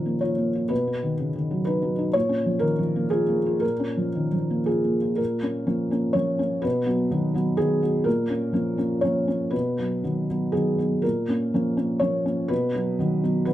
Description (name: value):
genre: neoclassical minimalist piano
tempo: 123 BPM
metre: 3/4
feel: rubato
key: Bb phrygian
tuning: A4 = 440 Hz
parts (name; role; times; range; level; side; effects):
- felt-muted upright piano; solo; 0.0-13.5 s; Bb2 to Db5; -22 LUFS; equal; none
room: light reverb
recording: none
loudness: -22 LUFS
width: side -13 dB against mid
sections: 0.0-5.2 A section; 5.2-13.5 A section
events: none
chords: 0.0 Bbm; 0.7 B; 2.1 Bbm; 6.6 B; 8.1 Bbm; 9.5 B; 11.0 Bbm; 12.5 B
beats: 0.22 | 0.70 1.19 1.66 | 2.14 2.62 3.12 | 3.63 4.15 4.68 | 5.19 5.68 6.16 | 6.64 7.12 7.59 | 8.06 8.54 9.04 | 9.54 10.04 10.54 | 11.04 11.53 12.02 | 12.51 13.00 13.48